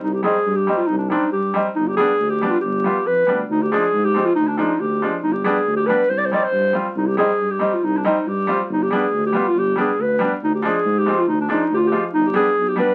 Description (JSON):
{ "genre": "klezmer", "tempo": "139 BPM", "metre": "2/4", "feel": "straight", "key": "C harmonic minor", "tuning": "A4 = 439 Hz", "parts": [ { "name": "dark clarinet", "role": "melody", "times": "0.0-12.9 s", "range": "D4 to D5", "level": "-21 LUFS", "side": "equal", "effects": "none" }, { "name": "dark tuba", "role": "bass", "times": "0.0-12.8 s", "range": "G1 to Ab2", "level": "-28 LUFS", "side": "equal", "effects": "none" }, { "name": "bright upright piano", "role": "accompaniment", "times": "0.2-12.9 s", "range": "F3 to F4", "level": "-24 LUFS", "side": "equal", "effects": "none" } ], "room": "moderate studio reverb, RT60 0.6 s", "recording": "very old 78 rpm record, vinyl crackle, nothing above 10.9 kHz", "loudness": "-19 LUFS", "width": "mono", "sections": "0.0-7.0 A section; 7.0-12.9 A section", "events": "none", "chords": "0.0 Cm; 1.8 G; 3.5 Ddim; 5.2 G; 6.1 C5; 7.0 Cm; 8.7 G; 10.4 Ddim; 12.1 G" }